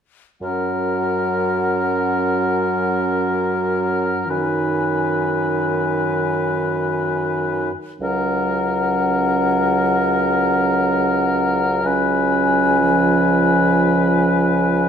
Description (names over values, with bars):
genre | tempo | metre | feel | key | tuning
classical, slow romantic movement for wind quintet | free time | none | none | F# major | A4 = 439 Hz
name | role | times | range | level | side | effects
mellow hollow concert flute | melody | 0.4-14.9 s | F#5 to G#5 | -24 LUFS | left 7 dB | none
warm oboe | second line | 0.4-14.9 s | A#4 to B4 | -22 LUFS | left 4 dB | none
dark French horn | accompaniment | 0.4-14.9 s | D#3 to F#3 | -25 LUFS | equal | none
warm clarinet | accompaniment | 0.4-14.9 s | C#4 to D#4 | -24 LUFS | right 9 dB | none
warm bassoon | bass | 0.4-14.9 s | C#2 to F#2 | -22 LUFS | right 2 dB | none
room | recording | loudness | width
wet recital hall reverb, RT60 1.3 s | none | -16 LUFS | side -7 dB against mid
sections
0.4-14.9 A section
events
none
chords
0.4 F#; 4.3 G#m7/F#; 8.0 F#/C#; 11.8 C#7